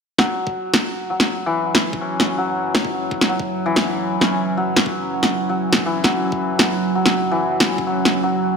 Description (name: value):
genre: half-time drum and bass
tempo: 164 BPM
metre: 4/4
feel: swing 54% on 16ths, half-time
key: unclear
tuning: A4 = 440 Hz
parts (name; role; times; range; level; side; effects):
- deep dark ambient pad; sustained chords; 1.3-8.6 s; F#3 to F#5; -24 LUFS; right 3 dB; chorus, built-in reverb, sidechain pumping
- santur; arpeggios; 0.2-8.6 s; E3 to C#4; -22 LUFS; left 2 dB; vintage 12-bit sampler grit, low-pass filter, dub echo
- electronic kick drum; drums; 0.2-7.9 s; none; -30 LUFS; equal; high-pass filter on kick, high-pass filter on room
- electronic snare drum; drums; 0.2-8.1 s; none; -18 LUFS; equal; none
room: moderate lush hall reverb, RT60 2.0 s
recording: none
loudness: -17 LUFS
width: side -5 dB against mid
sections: 0.2-8.6 A section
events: filter sweep on santur 0.2-8.6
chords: 0.2 F#5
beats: | 0.19 0.55 0.92 1.28 | 1.65 2.02 2.38 2.75 | 3.11 3.48 3.85 4.21 | 4.58 4.94 5.31 5.67 | 6.04 6.41 6.77 7.14 | 7.50 7.87 8.24